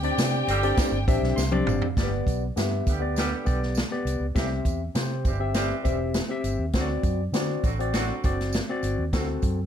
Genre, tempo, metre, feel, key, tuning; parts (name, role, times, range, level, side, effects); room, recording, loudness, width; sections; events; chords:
uptempo 1960s-style soul; 100 BPM; 4/4; straight; C major; A4 = 442 Hz
warm studio string section; second line; 0.0-1.6 s; G4 to G5; -32 LUFS; left 1 dB
barky tine electric piano; accompaniment; 0.0-9.6 s; Bb3 to C6; -28 LUFS; left 2 dB; overdrive, phaser
vintage muted fingered electric bass; bass; 0.0-9.7 s; E1 to D3; -28 LUFS; right 1 dB
swinging big-band drum kit; drums; 0.0-9.6 s; hi-hat, kick drum, snare drum, toms; -27 LUFS; equal
tambourine; percussion; 0.2-9.6 s; -41 LUFS; right 9 dB
clear horn section; second line; 0.5-9.3 s; D3 to G4; -32 LUFS; right 2 dB
moderate club reverb, RT60 0.8 s; dark, warm production; -23 LUFS; side -9 dB against mid
0.0-2.0 A section; 2.0-9.7 B section
band accent 0.0-2.0; tine electric piano fill 1.1-2.0; drum fill 1.4-2.0
0.0 Csus2; 2.0 G; 4.4 C; 6.7 D7